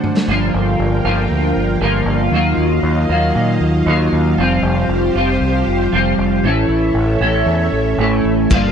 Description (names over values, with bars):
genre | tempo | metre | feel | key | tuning
psychedelic rock | 117 BPM | 4/4 | straight | G dorian | A4 = 440 Hz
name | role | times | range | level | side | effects
string machine, violas | sustained chords | 0.0-8.7 s | Gb3 to G5 | -24 LUFS | right 2 dB | ensemble chorus
twelve-string electric guitar | riff | 0.0-8.7 s | G2 to C5 | -15 LUFS | equal | flanger, double-tracked left and right
raw garage drum kit | drums | 0.0-0.3, 8.5-8.6 s | crash cymbal, kick drum, snare drum, toms | -19 LUFS | left 1 dB | none
growling fingered electric bass | bass | 0.3-8.7 s | F1 to Bb2 | -18 LUFS | equal | overdrive
maracas | percussion | 8.5-8.6 s | none | -32 LUFS | left 18 dB | none
room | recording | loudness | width
little or no reverb | dry, close 1970s-style studio recording | -13 LUFS | side -7 dB against mid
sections
0.3-8.7 A section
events
break 0.0; drum fill 0.0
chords
0.3 Gm7; 2.3 Ebmadd9; 4.4 Fsus2; 6.4 A